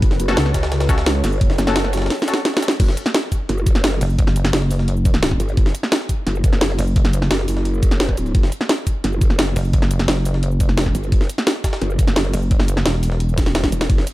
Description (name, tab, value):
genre	dark technical drum and bass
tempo	173 BPM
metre	4/4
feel	straight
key	F# phrygian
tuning	A4 = 440 Hz
part	deep dark ambient pad	sustained chords	0.0-2.8 s	F#4 to C#5	-32 LUFS	left 1 dB	chorus, built-in reverb, sidechain pumping
part	growl bass	bass	0.0-14.1 s	E1 to C#2	-20 LUFS	equal	chorus, overdrive, sidechain pumping
part	drum and bass drum kit	drums	0.0-14.1 s	crash cymbal, hi-hat, ride cymbal, shaker, snare drum	-21 LUFS	equal	studio ambience
part	electronic kick drum	drums	0.0-14.0 s	none	-17 LUFS	equal	studio ambience
part	jungle sampler-style drum kit	drums	0.0-14.1 s	hi-hat, snare drum	-30 LUFS	equal	high-pass filter on hats, studio ambience, high-pass filter on snare, high-pass filter on room
part	band-passed chord stab	stabs	0.3-2.3 s	C#4 to A4	-26 LUFS	left 2 dB	chorus, tape echo
part	pulsing pluck wobble bass	bass	4.0-7.3, 9.6-13.7 s	E1 to F#1	-18 LUFS	equal	chorus
room	little or no reverb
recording	dark, warm production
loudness	-16 LUFS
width	side -17 dB against mid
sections	0.0-2.8 A section; 2.8-14.1 A section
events	drop 0.0-2.8, 2.8-14.1; drum fill 2.1-2.8, 13.4-13.9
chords	0.0 F#m; 2.8 N.C.